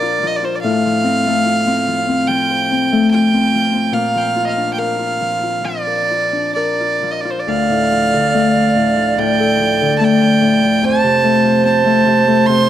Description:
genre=celtic folk, Celtic slow air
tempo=64-74 BPM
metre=4/4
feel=rubato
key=unclear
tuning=A4 = 441 Hz
part: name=rich fiddle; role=melody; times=0.0-12.7 s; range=C5 to C6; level=-17 LUFS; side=right 3 dB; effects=none
part: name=Celtic harp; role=accompaniment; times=0.0-12.7 s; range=D2 to C5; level=-16 LUFS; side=left 3 dB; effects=none
part: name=bright alto recorder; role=second line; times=7.5-12.7 s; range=C5 to D5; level=-17 LUFS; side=right 6 dB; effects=none
room=wet recital hall reverb, RT60 1.8 s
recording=dark, warm production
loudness=-13 LUFS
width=side -11 dB against mid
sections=0.0-12.7 A section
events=none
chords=0.0 Bb; 0.6 Fadd9/A; 3.9 Bb; 7.5 Dm; 10.8 F

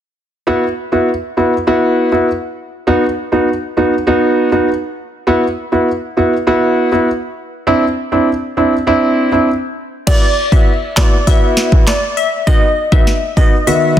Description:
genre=dancehall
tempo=100 BPM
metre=4/4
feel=straight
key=unclear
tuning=A4 = 435 Hz
part: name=warm concert grand piano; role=accompaniment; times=0.5-14.0 s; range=D#3 to F#4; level=-13 LUFS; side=right 1 dB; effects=sidechain pumping
part: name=glassy wavetable pluck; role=melody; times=10.1-14.0 s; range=D5 to E5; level=-16 LUFS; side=left 2 dB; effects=chorus, tape echo
part: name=afro-pop drum kit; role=drums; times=10.1-14.0 s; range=crash cymbal, handclaps, kick drum, snare drum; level=-12 LUFS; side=equal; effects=none
room=light reverb, digital ambience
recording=dense, heavily limited modern master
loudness=-11 LUFS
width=side -10 dB against mid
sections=0.5-10.1 A section; 10.1-14.0 B section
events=none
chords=0.5 Esus2; 2.9 B; 5.3 Esus2; 7.7 Cadd9; 10.1 Esus2; 12.5 B

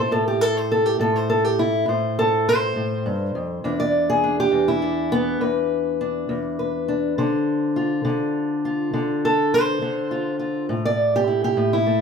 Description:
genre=acoustic country blues, solo or duo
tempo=68 BPM (dotted quarters)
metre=12/8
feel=straight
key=A minor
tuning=A4 = 439 Hz
part: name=fingerpicked steel-string acoustic guitar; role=solo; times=0.0-12.0 s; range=E2 to D5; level=-19 LUFS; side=equal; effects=none
room=wet small room reverb, RT60 0.5 s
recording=heard from further back in the room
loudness=-19 LUFS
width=side -6 dB against mid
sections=0.0-12.0 A section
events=steel-string acoustic guitar solo 0.0-12.0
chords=0.0 Am7; 3.6 E5; 7.2 Dm7; 10.7 A7(no3)

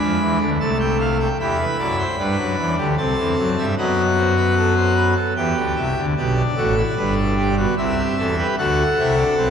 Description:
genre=classical, baroque-style 4-part fugue for pipe organ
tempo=76 BPM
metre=3/4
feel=straight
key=G major from 6.2 s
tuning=A4 = 440 Hz
part: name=pipe organ, full organ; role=solo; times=0.0-9.5 s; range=G1 to B5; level=-17 LUFS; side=equal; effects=none
room=wet cathedral reverb, RT60 4.6 s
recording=dark, warm production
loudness=-17 LUFS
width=side -7 dB against mid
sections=0.0-6.2 A section; 6.2-9.5 B section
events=none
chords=0.0 E7; 0.6 Am/C; 1.4 Em; 3.0 F#m7b5/C; 3.8 B7/F#; 5.4 Em; 6.2 G; 7.8 Am7/C; 8.6 D7

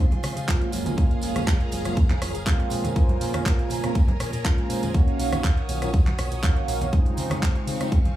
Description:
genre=filtered disco house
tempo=121 BPM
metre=4/4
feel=straight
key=Bb minor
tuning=A4 = 440 Hz
part: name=phased string machine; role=sustained chords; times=0.0-8.2 s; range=C4 to Eb6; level=-36 LUFS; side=left 1 dB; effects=ensemble chorus, phaser, sidechain pumping
part: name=direct-recorded clean electric guitar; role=riff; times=0.0-8.2 s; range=F3 to Ab4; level=-35 LUFS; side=right 4 dB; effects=vintage 12-bit sampler grit, sidechain pumping
part: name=fingered electric bass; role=bass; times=0.0-8.0 s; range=Gb1 to Db3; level=-30 LUFS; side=equal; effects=sidechain pumping
part: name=house drum kit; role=drums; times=0.1-8.1 s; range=handclaps, hi-hat, rim click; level=-32 LUFS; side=right 1 dB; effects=sidechain pumping on hats, sidechain pumping on cymbals
part: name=congas and tambourine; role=percussion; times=0.1-8.1 s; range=none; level=-34 LUFS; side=right 3 dB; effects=sidechain pumping on perc
part: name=mellow synth brass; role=accompaniment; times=0.5-7.9 s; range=Db3 to F5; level=-29 LUFS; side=right 1 dB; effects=chorus, phaser, sidechain pumping
part: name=electronic kick drum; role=drums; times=0.5-8.0 s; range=none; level=-20 LUFS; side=equal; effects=none
room=digital ambience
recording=small room ambience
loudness=-21 LUFS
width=side -13 dB against mid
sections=0.0-8.2 A section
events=none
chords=0.0 Dbmaj7; 0.7 Gbmaj9; 2.7 Bbm7; 4.9 Ebm7; 6.9 Dbmaj7

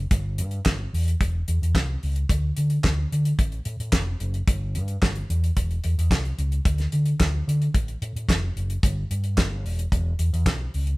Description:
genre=disco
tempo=110 BPM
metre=4/4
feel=straight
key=unclear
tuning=A4 = 440 Hz
part: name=fingered electric bass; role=bass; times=0.0-10.9 s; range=E1 to D3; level=-24 LUFS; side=equal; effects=none
part: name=damped 70s drum kit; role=drums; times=0.1-11.0 s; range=handclaps, hi-hat, kick drum, snare drum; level=-24 LUFS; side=equal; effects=none
room=moderate stone room reverb, RT60 1.0 s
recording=band playing live in one room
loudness=-22 LUFS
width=side -22 dB against mid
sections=0.0-11.0 A section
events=none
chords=none

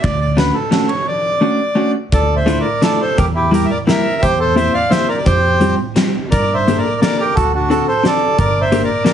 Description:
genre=musette waltz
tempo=173 BPM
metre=3/4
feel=rubato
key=D minor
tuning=A4 = 440 Hz
part: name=accordion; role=melody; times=0.0-9.1 s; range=D4 to F5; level=-16 LUFS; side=right 1 dB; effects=plate reverb
part: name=upright bass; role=bass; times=0.0-8.8 s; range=G1 to G2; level=-19 LUFS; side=right 1 dB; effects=none
part: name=oversized low-tuned drum kit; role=drums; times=0.0-9.1 s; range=hi-hat, kick drum, ride cymbal, snare drum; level=-20 LUFS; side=equal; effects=none
part: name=vintage hollow-body jazz guitar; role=accompaniment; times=0.4-9.1 s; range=G3 to Bb4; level=-17 LUFS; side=left 2 dB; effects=none
room=moderate studio reverb, RT60 0.5 s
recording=heavily compressed radio sound, nothing above 11.0 kHz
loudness=-13 LUFS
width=side -9 dB against mid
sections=0.0-2.1 A section; 2.1-9.1 B section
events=none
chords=0.0 Dmaj7; 2.1 Dmadd9; 3.2 Edim; 4.2 C7/E; 5.3 Fsus2; 6.3 Gmadd9; 7.4 D7; 8.4 Gm

